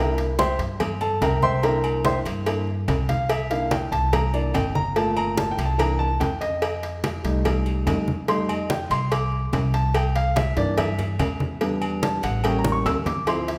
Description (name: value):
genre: Afro-Cuban jazz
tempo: 144 BPM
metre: 4/4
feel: straight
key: C mixolydian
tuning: A4 = 437 Hz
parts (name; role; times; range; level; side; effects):
- warm grand piano; accompaniment; 0.0-13.6 s; E3 to E6; -27 LUFS; equal; none
- upright bass; bass; 0.0-13.6 s; G1 to G2; -28 LUFS; equal; none
- congas; percussion; 0.2-13.6 s; none; -32 LUFS; equal; none
- cowbell; percussion; 0.2-13.6 s; none; -33 LUFS; equal; none
- timbales and agogo bells; percussion; 0.4-13.5 s; none; -34 LUFS; equal; none
room: wet recital hall reverb, RT60 1.7 s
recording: recorded in a church or concert hall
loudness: -23 LUFS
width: mono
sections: 0.0-13.6 A section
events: grand piano solo 0.0-13.6; drum fill 12.7-13.3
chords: 0.0 C7; 5.0 Gm7; 5.8 C7; 6.6 F7; 9.9 C7; 11.6 Em7; 12.4 A7b9